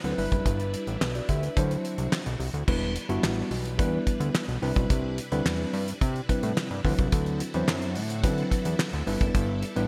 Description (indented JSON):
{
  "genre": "early-eighties boogie funk",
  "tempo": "108 BPM",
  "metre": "4/4",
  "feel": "straight",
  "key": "E minor",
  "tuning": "A4 = 438 Hz",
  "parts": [
    { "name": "tine electric piano", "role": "accompaniment", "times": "0.0-9.9 s", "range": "E3 to E5", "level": "-32 LUFS", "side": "equal", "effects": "none" },
    { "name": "string machine, violins", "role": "sustained chords", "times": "0.0-9.9 s", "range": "C3 to B4", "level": "-41 LUFS", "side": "equal", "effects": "ensemble chorus" },
    { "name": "fat analog bass", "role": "bass", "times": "0.0-9.9 s", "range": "E1 to D3", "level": "-32 LUFS", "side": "equal", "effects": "none" },
    { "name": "damped 70s drum kit", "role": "drums", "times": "0.0-9.9 s", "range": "crash cymbal, handclaps, hi-hat, kick drum, snare drum", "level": "-30 LUFS", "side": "equal", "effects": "gated reverb" }
  ],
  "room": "light reverb, small room ambience",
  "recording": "bright 1980s-style digital production",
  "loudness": "-27 LUFS",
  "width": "mono",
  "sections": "0.0-2.7 A section; 2.7-9.9 B section",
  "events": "none",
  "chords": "0.2 G6; 1.6 D9; 2.7 Em7; 4.6 Cmaj9; 6.8 D13; 9.1 G6"
}